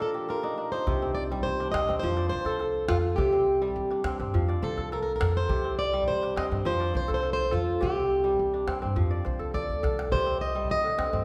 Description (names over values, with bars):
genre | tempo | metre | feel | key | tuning
west african traditional, West African string and xylophone music | 104 BPM | 4/4 | straight | C dorian | A4 = 440 Hz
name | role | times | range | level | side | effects
fingerpicked plugged-in swing-style acoustic guitar | melody | 0.0-11.2 s | F4 to Eb5 | -30 LUFS | equal | none
kora | arpeggios | 0.0-11.2 s | Bb2 to F5 | -33 LUFS | equal | none
upright bass | bass | 0.9-11.2 s | C2 to G2 | -33 LUFS | equal | none
calabash | percussion | 0.9-11.2 s | none | -38 LUFS | equal | none
room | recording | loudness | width
wet recital hall reverb, RT60 1.6 s | recorded in a church or concert hall | -27 LUFS | mono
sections
0.9-11.2 A section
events
kora fill 0.0-0.9; drum fill 9.5-10.1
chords
0.0 Bb; 0.9 C5; 2.0 F; 3.2 C5; 4.3 F; 5.5 C5; 6.7 F; 7.8 C5; 9.0 F; 10.1 Cm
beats
0.30 | 0.88 1.46 2.03 2.61 | 3.19 3.77 4.34 4.92 | 5.50 6.08 6.65 7.23 | 7.81 8.38 8.96 9.54 | 10.12 10.70